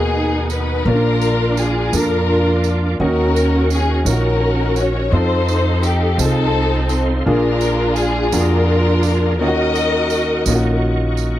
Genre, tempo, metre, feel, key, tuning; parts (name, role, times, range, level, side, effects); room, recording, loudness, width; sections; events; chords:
slow gospel; 56 BPM (dotted quarters); 6/8; straight; Eb minor; A4 = 440 Hz
dark studio string section; melody; 0.0-10.8 s; C4 to Eb5; -18 LUFS; left 1 dB
clear concert grand piano; accompaniment; 0.0-11.4 s; Bb2 to Bb4; -21 LUFS; equal
bright tonewheel organ; sustained chords; 0.0-11.4 s; Cb4 to Eb6; -29 LUFS; right 2 dB; fast rotary speaker, chorus vibrato
upright bass; bass; 0.0-11.4 s; Bb1 to F2; -18 LUFS; equal
tambourine; percussion; 0.5-11.4 s; -29 LUFS; right 17 dB
light reverb; dry, close 1970s-style studio recording; -14 LUFS; side -13 dB against mid
0.0-11.4 A section
0.0 Abm7; 0.9 Bb; 3.0 Ebm7; 5.1 F7; 7.3 Bb7; 9.4 Ebm7